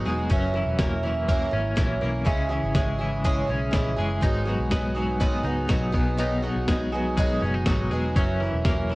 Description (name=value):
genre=jangly indie pop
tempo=122 BPM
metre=4/4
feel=straight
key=unclear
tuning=A4 = 440 Hz
part: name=picked twelve-string acoustic guitar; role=accompaniment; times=0.0-8.9 s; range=G#2 to A#4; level=-28 LUFS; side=right 2 dB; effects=cassette tape
part: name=twelve-string electric guitar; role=arpeggios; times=0.0-8.9 s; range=F#2 to D#4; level=-28 LUFS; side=left 2 dB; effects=tremolo, cassette tape
part: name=vintage muted picked electric bass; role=bass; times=0.0-8.9 s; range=E1 to C#2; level=-29 LUFS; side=equal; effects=none
part: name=lo-fi sampler-style drum kit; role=drums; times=0.3-8.8 s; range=hi-hat, kick drum, snare drum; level=-24 LUFS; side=equal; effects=cassette tape
room=light reverb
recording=home recording on cassette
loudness=-22 LUFS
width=side -21 dB against mid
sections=0.0-8.9 A section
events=none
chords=0.3 F#7; 2.3 C#m; 4.2 G#m7; 5.9 B6; 8.2 F#7